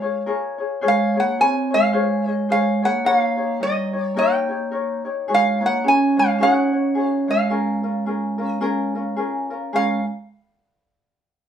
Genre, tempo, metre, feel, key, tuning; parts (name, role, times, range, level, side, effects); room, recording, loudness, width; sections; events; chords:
Hawaiian; 108 BPM; 4/4; swing 59% on 8ths; Db major; A4 = 440 Hz
lap resonator guitar; melody; 0.0-10.1 s; Eb5 to Ab5; -20 LUFS; right 1 dB
vibraphone with medium hard mallets; second line; 0.0-10.0 s; G3 to Db4; -23 LUFS; right 3 dB
ukulele; accompaniment; 0.0-10.0 s; Db4 to Db5; -23 LUFS; left 5 dB
wet studio ambience, RT60 0.5 s; band playing live in one room; -18 LUFS; side -9 dB against mid
0.8-9.7 A section; 9.7-11.5 B section
0.0 Db6; 0.8 Dbmaj7; 3.0 Eb7; 5.3 Ab7sus4; 7.5 Db6